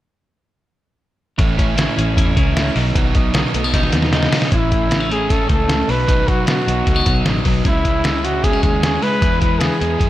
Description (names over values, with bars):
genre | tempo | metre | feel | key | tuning
jangly indie pop | 153 BPM | 4/4 | straight | A lydian | A4 = 441 Hz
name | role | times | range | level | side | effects
crunchy overdriven guitar | accompaniment | 1.4-10.1 s | A2 to E4 | -23 LUFS | right 5 dB | slapback echo
clean electric guitar | arpeggios | 1.4-10.1 s | A2 to E4 | -22 LUFS | left 3 dB | phaser, digital delay
vintage muted fingered electric bass | bass | 1.4-10.1 s | A1 to F#2 | -21 LUFS | equal | none
lo-fi sampler-style drum kit | drums | 1.4-10.1 s | hi-hat, kick drum, snare drum | -18 LUFS | equal | none
breathy trumpet | melody | 4.5-10.1 s | E4 to B4 | -20 LUFS | equal | slapback echo
room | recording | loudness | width
moderate lush hall reverb, RT60 2.0 s, digital ambience | big arena sound | -14 LUFS | side -14 dB against mid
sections
1.4-4.5 A section; 4.5-10.1 B section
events
drum fill 3.7-4.5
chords
1.4 A; 2.8 B; 4.5 A; 5.9 B; 7.7 C#m; 9.2 E